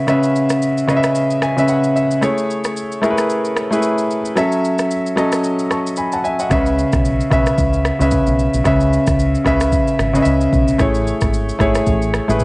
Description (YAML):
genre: afrobeats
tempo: 112 BPM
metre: 4/4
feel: swing 58% on 16ths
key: C# minor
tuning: A4 = 438 Hz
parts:
  - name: clear grand piano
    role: accompaniment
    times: 0.0-12.4 s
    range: C#3 to C#6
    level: -15 LUFS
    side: equal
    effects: cassette tape
  - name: afro-pop drum kit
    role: drums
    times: 0.1-12.4 s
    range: kick drum, rim click, shaker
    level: -21 LUFS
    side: equal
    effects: cassette tape
  - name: deep dub fingered electric bass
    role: bass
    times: 6.5-12.4 s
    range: G#1 to C#2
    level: -19 LUFS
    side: equal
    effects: none
room: light reverb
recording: home recording on cassette, nothing above 10.4 kHz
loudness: -14 LUFS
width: side -23 dB against mid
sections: 0.0-12.4 A section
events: break 0.0-6.5; grand piano fill 1.2-2.2; kick muted 4.4-6.5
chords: 0.0 C#m7; 2.2 Amaj7; 4.4 F#m7; 6.5 C#m7; 10.8 Amaj7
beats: | 0.08 0.62 1.15 1.69 | 2.23 2.76 3.30 3.83 | 4.37 4.90 5.44 5.97 | 6.51 7.05 7.58 8.12 | 8.65 9.19 9.72 10.26 | 10.80 11.33 11.87 12.40